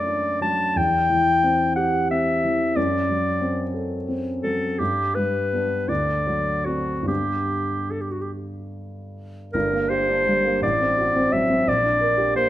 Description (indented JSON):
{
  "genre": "classical, romantic duo for clarinet and grand piano",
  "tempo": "46-62 BPM (dotted quarters)",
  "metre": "6/8",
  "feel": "rubato",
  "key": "G major",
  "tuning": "A4 = 441 Hz",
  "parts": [
    { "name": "clear clarinet", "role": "melody", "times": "0.0-12.5 s", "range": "F#4 to A5", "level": "-21 LUFS", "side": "left 1 dB", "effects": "none" },
    { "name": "dark grand piano", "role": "accompaniment", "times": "0.0-12.5 s", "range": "G1 to Bb4", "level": "-24 LUFS", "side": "equal", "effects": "none" }
  ],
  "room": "wet stone room reverb, RT60 1.0 s",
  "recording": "none",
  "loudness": "-20 LUFS",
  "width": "side -13 dB against mid",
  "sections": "0.0-9.5 A section; 9.5-12.5 B section",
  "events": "none",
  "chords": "0.0 D/F#; 0.8 C/E; 2.8 D7/F#; 4.8 G; 5.9 D7; 7.1 G; 9.5 Gm; 10.6 F#dim/A; 11.7 Gm/Bb"
}